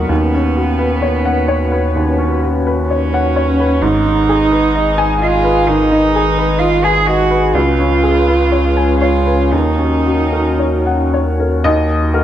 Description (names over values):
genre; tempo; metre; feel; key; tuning
neoclassical piano and strings; 54-66 BPM; 4/4; rubato; Eb minor; A4 = 440 Hz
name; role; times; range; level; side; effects
muted cello; second line; 0.0-11.1 s; B3 to Ab4; -16 LUFS; right 4 dB; none
clear upright piano; accompaniment; 0.0-12.2 s; Db2 to Ab5; -16 LUFS; left 1 dB; none
hollow soft pad; sustained chords; 0.0-12.2 s; C#4 to B4; -22 LUFS; left 3 dB; chorus
saturated sub bass; bass; 0.0-12.2 s; Ab1 to D#2; -18 LUFS; left 1 dB; none
room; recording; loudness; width
moderate recital hall reverb, RT60 1.4 s; none; -12 LUFS; side -11 dB against mid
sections
0.0-11.6 A section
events
none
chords
0.1 Badd9/D#; 3.8 Abm; 7.5 Db7; 9.5 Ebm7; 11.6 Ebm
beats
| 0.10 1.03 1.96 2.90 | 3.83 4.75 5.67 6.60 | 7.54 8.51 9.52 10.60 | 11.64